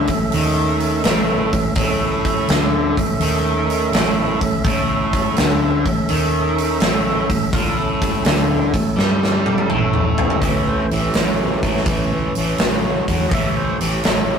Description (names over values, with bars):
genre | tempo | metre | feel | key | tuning
blues rock power trio and southern rock | 83 BPM | 4/4 | swing 68% on 8ths | A mixolydian | A4 = 439 Hz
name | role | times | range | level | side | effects
tonewheel organ | sustained chords | 0.0-14.4 s | E3 to E5 | -23 LUFS | right 3 dB | overdrive, fast rotary speaker
distorted electric guitar | riff | 0.0-14.4 s | A2 to G3 | -20 LUFS | left 1 dB | distortion
vintage muted fingered electric bass | bass | 0.0-14.4 s | A1 to G2 | -24 LUFS | equal | none
big rock drum kit | drums | 0.1-14.3 s | hi-hat, kick drum, snare drum, toms | -20 LUFS | equal | none
room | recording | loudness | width
moderate studio reverb, RT60 0.7 s | rough rehearsal-room recording, tube saturation | -16 LUFS | side -7 dB against mid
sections
0.0-10.4 A section; 10.4-14.4 B section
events
drum fill 9.0-10.4; tonewheel organ solo 10.4-14.4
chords
0.0 A